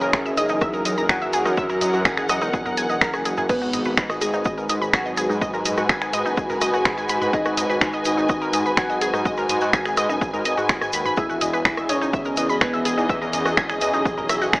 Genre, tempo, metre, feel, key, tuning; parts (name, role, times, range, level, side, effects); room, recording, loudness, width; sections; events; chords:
melodic techno; 125 BPM; 4/4; straight; G# minor; A4 = 440 Hz
soft octave-layered synth lead; melody; 0.0-13.5 s; F#3 to F#4; -28 LUFS; equal; chorus, phaser, tape echo
glassy wavetable pluck; second line; 0.0-13.5 s; F#4 to F#5; -30 LUFS; equal; chorus, sidechain pumping, tape echo
warm analog pad; sustained chords; 0.0-14.6 s; E3 to B4; -30 LUFS; equal; chorus, sidechain pumping
wide unison pluck; arpeggios; 0.0-14.6 s; D#4 to A#6; -25 LUFS; equal; sidechain pumping, tape echo
dark detuned saw bass; bass; 0.0-14.6 s; E1 to G#2; -28 LUFS; equal; sidechain pumping
egg shaker; percussion; 0.0-14.6 s; -37 LUFS; equal
dark symphonic string section; texture; 0.0-14.6 s; F#4 to G#5; -28 LUFS; left 1 dB; sidechain pumping
electronic kick drum; drums; 0.1-14.6 s; -26 LUFS; equal
house drum kit; drums; 0.1-14.6 s; crash cymbal, finger snaps, hi-hat, rim click, toms; -22 LUFS; equal; sidechain pumping on hats, sidechain pumping on toms, sidechain pumping on cymbals
moderate scoring stage reverb, RT60 1.8 s, digital ambience; AM radio sound; -19 LUFS; side -22 dB against mid
0.0-14.6 A section
0.0 F#7; 3.5 G#m7; 11.2 Emaj7